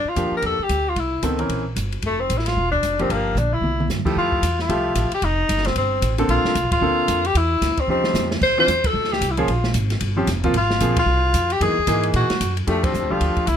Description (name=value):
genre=jazz, small-group swing and bop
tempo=226 BPM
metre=4/4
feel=swing 60% on 8ths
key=F major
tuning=A4 = 440 Hz
part: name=warm tenor saxophone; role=melody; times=0.0-13.6 s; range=A3 to C5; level=-21 LUFS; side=left 2 dB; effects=none
part: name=upright bass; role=bass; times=0.0-13.6 s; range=E1 to Bb2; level=-23 LUFS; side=equal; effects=none
part: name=bright upright piano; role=accompaniment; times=0.2-13.5 s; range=Db3 to E5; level=-23 LUFS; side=right 1 dB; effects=none
part: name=open jazz drum kit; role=drums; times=0.2-13.5 s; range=crash cymbal, hi-hat, kick drum, ride cymbal, snare drum, toms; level=-26 LUFS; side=right 1 dB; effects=none
room=little or no reverb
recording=close, detailed microphones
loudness=-18 LUFS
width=side -8 dB against mid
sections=0.0-4.2 A section; 4.2-12.7 B section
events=drum fill 3.4-3.9, 7.9-8.4; band accent 6.7, 8.8, 10.9, 12.8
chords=0.0 Gm7; 1.0 C7b9; 2.0 F6; 3.1 Gm7; 3.6 C; 4.2 Fmaj9; 5.2 F9; 6.3 Bbmaj9; 7.3 Cadd9 (rootless); 7.9 Eb9; 8.4 Dm9; 9.5 Bb5; 10.0 Bbm69; 10.5 Ab69; 11.6 Gb13; 12.7 F69